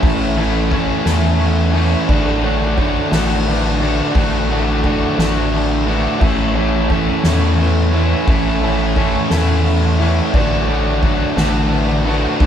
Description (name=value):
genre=post-rock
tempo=58 BPM (dotted quarters)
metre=6/8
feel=straight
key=A major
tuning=A4 = 440 Hz
part: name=evolving wavetable pad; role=sustained chords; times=0.0-12.5 s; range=A4 to E6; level=-30 LUFS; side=left 1 dB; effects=none
part: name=felt-muted upright piano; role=arpeggios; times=0.0-12.5 s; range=A4 to E5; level=-31 LUFS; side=right 1 dB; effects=none
part: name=twangy electric guitar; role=arpeggios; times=0.0-12.5 s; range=A2 to C#4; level=-28 LUFS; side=right 1 dB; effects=none
part: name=distorted electric guitar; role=riff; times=0.0-12.5 s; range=A2 to A4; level=-19 LUFS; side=left 4 dB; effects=distortion
part: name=sludgy distorted guitar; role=riff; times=0.0-12.5 s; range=A2 to F#4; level=-20 LUFS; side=right 5 dB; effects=overdrive
part: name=rubbery square bass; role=bass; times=0.0-12.5 s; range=A1 to E2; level=-19 LUFS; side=equal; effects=none
part: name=soft-mallet drum kit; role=drums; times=0.0-12.5 s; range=crash cymbal, kick drum, ride cymbal, snare drum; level=-20 LUFS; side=equal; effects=none
room=moderate studio reverb, RT60 0.6 s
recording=band playing live in one room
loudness=-13 LUFS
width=side -9 dB against mid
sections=0.0-12.5 A section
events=none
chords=0.0 Amaj7; 2.1 Dmaj7/A; 6.2 Amaj7; 10.3 Dmaj7/A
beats=| 0.03 1.06 | 2.09 3.12 | 4.15 5.18 | 6.21 7.24 | 8.28 9.31 | 10.34 11.37 | 12.40